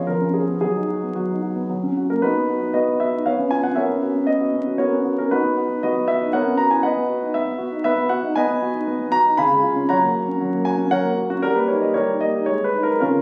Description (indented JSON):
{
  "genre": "classical-period piano sonatina",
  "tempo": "117 BPM",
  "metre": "3/4",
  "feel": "rubato",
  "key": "B major, F# major from 8.4 s",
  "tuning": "A4 = 440 Hz",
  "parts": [
    { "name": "dark concert grand piano", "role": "solo", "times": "0.0-13.2 s", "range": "C#3 to B5", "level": "-20 LUFS", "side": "equal", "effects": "none" }
  ],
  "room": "moderate recital hall reverb, RT60 1.6 s",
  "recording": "recorded on a phone in the room, club reverb, vinyl crackle",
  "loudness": "-21 LUFS",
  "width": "mono",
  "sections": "0.0-2.2 A section; 2.2-13.2 B section",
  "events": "none",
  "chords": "0.0 C#7/E#; 0.6 B/F#; 1.7 F#; 2.2 B; 3.3 C#7/B; 3.8 F#7/B; 5.3 B; 6.3 F#7/B; 6.8 B; 9.4 C#7; 9.9 F#; 11.4 D#/G; 12.5 G#5"
}